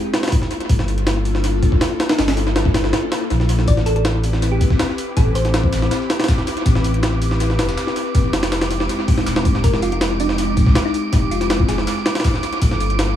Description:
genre	drum and bass, jungle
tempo	161 BPM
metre	4/4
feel	straight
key	A phrygian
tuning	A4 = 440 Hz
part	jungle sampler-style drum kit	drums	0.1-13.1 s	hi-hat, kick drum, snare drum	-18 LUFS	equal	overdrive, tape echo
part	airy breathy pad	sustained chords	0.4-13.2 s	Ab3 to B5	-25 LUFS	left 1 dB	chorus
part	saturated sub bass	bass	0.7-13.2 s	D1 to C2	-20 LUFS	equal	none
part	thumb-piano-like synth pluck	melody	3.7-5.9, 9.6-11.9 s	Eb4 to D5	-26 LUFS	left 1 dB	chorus, phaser, dub echo
part	dusty soul sampler-style drum kit	drums	3.7-13.1 s	hi-hat, snare drum, tambourine	-32 LUFS	left 1 dB	high-pass filter on perc, high-pass filter on snare, high-pass filter on hats, high-pass filter on room, tape echo
part	wind-like tuned noise texture	texture	4.1-13.2 s	D6	-29 LUFS	right 4 dB	built-in reverb
room	light reverb, digital ambience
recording	echo-heavy mix, small room ambience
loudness	-15 LUFS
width	side -11 dB against mid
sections	0.0-13.2 A section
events	none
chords	0.0 Gm9; 3.7 Am9; 8.1 Fm9; 11.9 Gm9

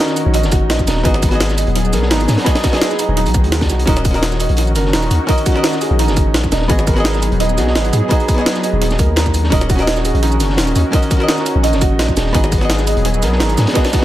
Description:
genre	liquid drum and bass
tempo	170 BPM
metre	4/4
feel	straight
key	Eb minor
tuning	A4 = 440 Hz
part	archtop guitar, miked and amplified	accompaniment	0.0-14.0 s	Cb4 to Eb5	-22 LUFS	left 1 dB	vintage 12-bit sampler grit, dub echo
part	warm analog pad	sustained chords	0.0-14.0 s	Eb3 to Ab4	-23 LUFS	left 2 dB	chorus, sidechain pumping
part	felt-muted upright piano	arpeggios	0.0-14.0 s	Eb3 to Eb5	-21 LUFS	right 4 dB	dub echo
part	crunchy breakbeat drum kit	drums	0.0-14.0 s	hi-hat, snare drum	-23 LUFS	equal	high-pass filter on hats, high-pass filter on snare, high-pass filter on room
part	jungle sampler-style drum kit	drums	0.1-14.0 s	hi-hat, shaker, snare drum	-21 LUFS	equal	analog delay
part	long sustained 808-style bass	bass	0.3-13.7 s	Eb1 to Ab2	-16 LUFS	equal	tube saturation
part	electronic kick drum	drums	0.5-14.0 s	none	-16 LUFS	equal	overdrive
room	light reverb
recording	echo-heavy mix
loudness	-12 LUFS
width	side -14 dB against mid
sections	0.0-14.0 A section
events	none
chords	0.0 Ebm7; 1.1 Abm7; 3.9 Ebm7; 6.7 Abm7; 9.5 Ebm7; 12.3 Abm7

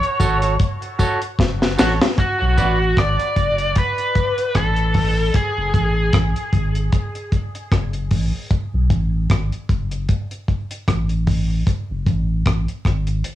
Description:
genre	dub reggae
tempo	76 BPM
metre	4/4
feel	swing 56% on 16ths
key	F# minor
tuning	A4 = 440 Hz
part	biting lead guitar	melody	0.0-6.2 s	F#4 to D5	-22 LUFS	equal	overdrive, dub echo
part	deep reggae drum kit	drums	0.0-13.3 s	hi-hat, kick drum, rim click, snare drum	-19 LUFS	equal	cassette tape
part	clean electric guitar	accompaniment	0.2-2.8 s	F#4 to D5	-26 LUFS	right 3 dB	harmonic tremolo, cassette tape, dub echo
part	warm sub bass	bass	0.2-13.2 s	F#1 to B1	-20 LUFS	equal	transformer saturation
part	tambourine	percussion	0.2-2.8 s	none	-34 LUFS	right 4 dB	dub echo
room	light reverb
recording	home recording on cassette, studio reverb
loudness	-17 LUFS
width	side -13 dB against mid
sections	0.0-13.3 A section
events	drum fill 1.4-2.2; part muted 2.2-13.3; break 5.3-13.3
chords	0.0 F#m; 2.2 Bm; 3.8 Asus2; 5.3 F#m; 8.5 B5; 10.1 N.C.

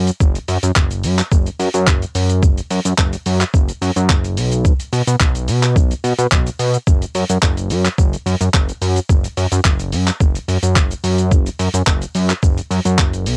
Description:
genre	dance-pop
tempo	108 BPM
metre	4/4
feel	straight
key	unclear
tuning	A4 = 440 Hz
part	fat analog bass	bass	0.0-13.4 s	F#1 to B2	-16 LUFS	equal	sidechain pumping
part	boom bap sampler-style drum kit	drums	0.1-13.4 s	handclaps, hi-hat, kick drum, shaker	-15 LUFS	equal	none
room	little or no reverb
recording	home recording on cassette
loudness	-13 LUFS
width	side -37 dB against mid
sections	0.0-13.4 A section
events	none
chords	none

